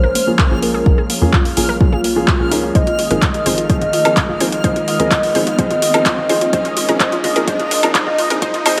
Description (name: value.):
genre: progressive house.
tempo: 127 BPM.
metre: 4/4.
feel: straight.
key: unclear.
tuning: A4 = 440 Hz.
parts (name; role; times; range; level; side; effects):
warm velvety synth lead; melody; 0.0-8.8 s; F4 to Eb5; -21 LUFS; equal; chorus, cassette tape, tape echo.
lush unison pad; sustained chords; 0.0-8.8 s; Eb3 to F4; -29 LUFS; equal; chorus, sidechain pumping.
analog pluck; arpeggios; 0.0-8.8 s; Bb3 to C5; -26 LUFS; equal; chorus, sidechain pumping, tape echo.
tight sequencer bass; bass; 0.0-8.8 s; Ab1 to F2; -26 LUFS; equal; sidechain pumping.
riser; sound effects; 0.2-8.8 s; none; -30 LUFS; equal; none.
backwards swelling texture; texture; 0.0-8.8 s; F6; -33 LUFS; equal; built-in reverb, sidechain pumping.
deep house drum kit; drums; 0.2-8.8 s; handclaps, hi-hat, woodblock; -22 LUFS; equal; overdrive, sidechain pumping on hats, high-pass filter on hats, small room ambience, high-pass filter on snare, sidechain pumping on perc, high-pass filter on perc.
dark concert grand piano; stabs; 0.3-8.8 s; F3 to Ab4; -24 LUFS; equal; sidechain pumping, tape echo.
electronic kick drum; drums; 0.4-8.5 s; none; -18 LUFS; equal; small room ambience.
room: light reverb.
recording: high-pass filter.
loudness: -15 LUFS.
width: mono.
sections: 0.0-8.8 A section.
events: build-up 0.0-8.8; filter sweep on synth arpeggio sound 0.0-8.8; filter sweep 0.0-8.8; riser 0.2-8.8.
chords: 0.0 Bbm7; 2.8 Fm7/Ab.